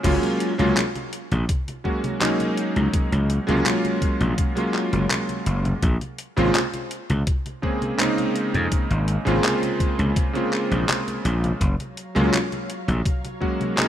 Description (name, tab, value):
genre	vaporwave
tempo	83 BPM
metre	4/4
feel	straight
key	unclear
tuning	A4 = 442 Hz
part	clear electric grand piano	accompaniment	0.0-13.9 s	Db3 to Ab4	-23 LUFS	right 1 dB	analog chorus, vintage 12-bit sampler grit, tape echo
part	gritty slap bass	bass	0.0-13.0 s	Gb1 to F2	-21 LUFS	equal	overdrive
part	detuned 8-bit digital drum machine	drums	0.0-13.9 s	congas, crash cymbal, handclaps, hi-hat	-28 LUFS	equal	none
part	electronic kick drum	drums	0.0-13.6 s	none	-24 LUFS	equal	none
part	soft string machine	sustained chords	11.6-13.9 s	Gb3 to Bb5	-34 LUFS	equal	ensemble chorus, vintage 12-bit sampler grit
room	light reverb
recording	rough home demo mix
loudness	-20 LUFS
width	side -11 dB against mid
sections	0.0-13.9 A section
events	none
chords	0.0 Gbmaj7; 5.8 Bbm9; 11.6 Gbmaj7